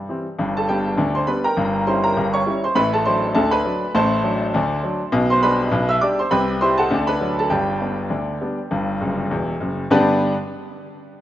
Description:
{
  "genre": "ragtime piano",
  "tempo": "101 BPM",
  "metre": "2/4",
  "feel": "swing 57% on 16ths",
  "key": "G major",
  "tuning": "A4 = 440 Hz",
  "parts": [
    { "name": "clear grand piano", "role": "solo", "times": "0.0-10.3 s", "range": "E1 to E6", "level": "-18 LUFS", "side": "equal", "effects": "none" }
  ],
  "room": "moderate lush hall reverb, RT60 3.0 s",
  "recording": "rough home demo mix, nothing above 7.7 kHz",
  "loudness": "-17 LUFS",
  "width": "side -13 dB against mid",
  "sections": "0.4-9.9 A section; 9.9-11.1 B section",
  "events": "grand piano fill 9.0-9.9",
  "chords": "0.4 G; 1.6 Gdim7; 2.8 D7/A; 5.1 G/B; 6.3 C; 6.9 D; 7.5 G"
}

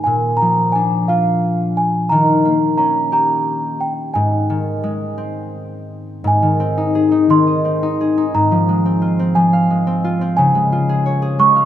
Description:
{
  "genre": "children's music, lullaby",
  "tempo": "59 BPM (dotted quarters)",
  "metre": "6/8",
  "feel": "rubato",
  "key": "Ab major",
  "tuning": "A4 = 440 Hz",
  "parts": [
    { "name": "celesta", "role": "melody", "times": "0.0-11.7 s", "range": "F5 to Db6", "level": "-17 LUFS", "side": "right 2 dB", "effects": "slapback echo" },
    { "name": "concert harp", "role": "accompaniment", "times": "0.0-11.7 s", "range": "Ab2 to F5", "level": "-16 LUFS", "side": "left 1 dB", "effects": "none" }
  ],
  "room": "moderate lush hall reverb, RT60 2.9 s",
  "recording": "rough home demo mix",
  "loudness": "-14 LUFS",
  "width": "side -11 dB against mid",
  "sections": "0.0-6.2 A section; 6.2-11.7 B section",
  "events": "none",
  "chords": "0.1 Bb; 2.1 Eb7; 4.2 Ab; 8.3 Fm/Ab; 10.4 Db"
}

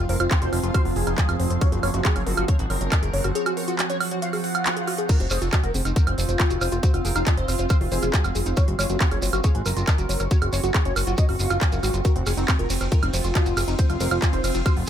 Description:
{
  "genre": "psychedelic trance",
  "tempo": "138 BPM",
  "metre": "4/4",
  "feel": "straight",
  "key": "F phrygian",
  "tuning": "A4 = 440 Hz",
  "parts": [
    { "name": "wide unison lead", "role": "melody", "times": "0.0-14.9 s", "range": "C4 to Gb5", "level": "-30 LUFS", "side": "equal", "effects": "phaser, sidechain pumping, dub echo" },
    { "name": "overtone-sweeping drone", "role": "sustained chords", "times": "0.0-14.9 s", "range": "F3 to C4", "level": "-33 LUFS", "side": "right 4 dB", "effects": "chorus, built-in reverb, sidechain pumping" },
    { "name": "woody wave-folded pluck", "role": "riff", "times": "0.0-14.9 s", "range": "Eb4 to Ab5", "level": "-31 LUFS", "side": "moving between left 5 dB and right 2 dB", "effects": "chorus, auto-pan, sidechain pumping, dub echo" },
    { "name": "fat analog bass", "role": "bass", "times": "0.0-14.9 s", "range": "F1 to Ab1", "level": "-25 LUFS", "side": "equal", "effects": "none" },
    { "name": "granular cloud pad", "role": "texture", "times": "0.0-14.9 s", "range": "C4 to Db6", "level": "-32 LUFS", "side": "right 2 dB", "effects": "built-in reverb, sidechain pumping" },
    { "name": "techno drum kit", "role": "drums", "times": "0.1-14.9 s", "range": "crash cymbal, handclaps, hi-hat, ride cymbal, woodblock", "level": "-28 LUFS", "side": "right 3 dB", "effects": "none" },
    { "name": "electronic kick drum", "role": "drums", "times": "0.3-14.7 s", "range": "none", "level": "-20 LUFS", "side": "equal", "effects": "none" },
    { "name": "swell", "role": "sound effects", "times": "4.4-5.1 s", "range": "none", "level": "-35 LUFS", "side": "right 2 dB", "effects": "none" },
    { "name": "shekere", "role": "percussion", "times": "5.1-14.9 s", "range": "none", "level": "-34 LUFS", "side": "right 2 dB", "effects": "none" }
  ],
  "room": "digital ambience",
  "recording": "none",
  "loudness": "-20 LUFS",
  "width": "side -10 dB against mid",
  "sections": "0.0-14.9 A section",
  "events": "break 3.4-5.1; swell 4.4-5.1",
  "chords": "0.0 F5; 1.6 Gb5; 5.1 F5; 8.6 Gb5; 12.0 F5"
}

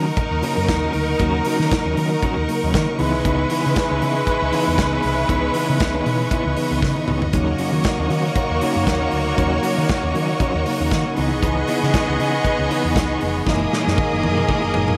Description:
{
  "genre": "disco",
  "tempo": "117 BPM",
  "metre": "4/4",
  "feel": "swing 56% on 16ths",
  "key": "C# dorian",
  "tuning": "A4 = 441 Hz",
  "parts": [
    { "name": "clear studio violin section", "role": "second line", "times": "0.0-15.0 s", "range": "G#3 to D#5", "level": "-25 LUFS", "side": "equal", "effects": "none" },
    { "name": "electric guitar at the edge of break-up", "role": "accompaniment", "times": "0.0-15.0 s", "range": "E3 to F#4", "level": "-30 LUFS", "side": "equal", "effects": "tremolo" },
    { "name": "mellow tine electric piano", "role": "accompaniment", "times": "0.0-15.0 s", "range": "G#2 to D#4", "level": "-28 LUFS", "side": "equal", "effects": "none" },
    { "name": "bright studio string section", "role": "sustained chords", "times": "0.0-15.0 s", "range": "A#4 to D#6", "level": "-30 LUFS", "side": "equal", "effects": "none" },
    { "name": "hollow-body short-scale fingered electric bass", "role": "bass", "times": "0.0-15.0 s", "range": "E#1 to D#3", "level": "-26 LUFS", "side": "equal", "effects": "none" },
    { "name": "modern studio drum kit", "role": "drums", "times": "0.2-15.0 s", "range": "hi-hat, kick drum, snare drum, toms", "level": "-27 LUFS", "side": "equal", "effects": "none" }
  ],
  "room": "light reverb, studio reverb",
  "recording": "vinyl crackle",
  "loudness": "-20 LUFS",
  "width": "mono",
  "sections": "0.0-15.0 A section",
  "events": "drum fill 6.8-7.3, 13.5-15.0",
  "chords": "0.0 D#m7; 3.0 C#m9; 7.3 D#m7; 11.2 C#m9; 13.5 F#13"
}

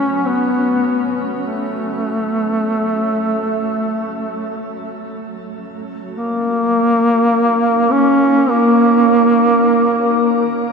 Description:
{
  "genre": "dark ambient drone",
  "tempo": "free time",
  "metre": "none",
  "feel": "none",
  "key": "unclear",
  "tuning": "A4 = 440 Hz",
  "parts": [
    { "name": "mellow duduk", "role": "melody", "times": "0.0-10.6 s", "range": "A3 to Db4", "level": "-14 LUFS", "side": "equal", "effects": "shimmer reverb, ping-pong delay" },
    { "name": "granular cloud pad", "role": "sustained chords", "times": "0.0-10.7 s", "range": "Gb3 to Db5", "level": "-28 LUFS", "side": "equal", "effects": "built-in reverb, shimmer reverb" }
  ],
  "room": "wet huge ambient reverb, RT60 8.3 s",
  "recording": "none",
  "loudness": "-13 LUFS",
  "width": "side -5 dB against mid",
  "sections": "0.0-6.1 A section; 6.1-10.7 B section",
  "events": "none",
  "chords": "0.0 Gbm; 6.1 Ebm7"
}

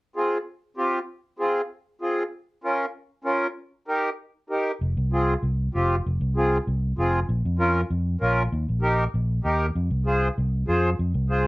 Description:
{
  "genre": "latin, cumbia",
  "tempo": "194 BPM",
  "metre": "4/4",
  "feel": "straight",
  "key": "F minor",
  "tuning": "A4 = 440 Hz",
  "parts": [
    { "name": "accordion", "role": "accompaniment", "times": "0.2-11.5 s", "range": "C4 to C5", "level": "-23 LUFS", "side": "equal", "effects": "none" },
    { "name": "fingered electric bass", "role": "bass", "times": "4.8-11.5 s", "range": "F1 to F2", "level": "-23 LUFS", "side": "equal", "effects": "none" }
  ],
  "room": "light reverb",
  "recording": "worn, warbling old tape, cassette tape, warbly pitch drift",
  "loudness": "-22 LUFS",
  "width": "side -21 dB against mid",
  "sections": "0.0-4.8 A section; 4.8-11.5 B section",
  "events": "none",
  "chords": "0.0 Fm; 2.3 Bbm; 3.6 Eb; 4.8 Fm; 7.3 Bbm; 8.5 Eb; 9.8 Fm"
}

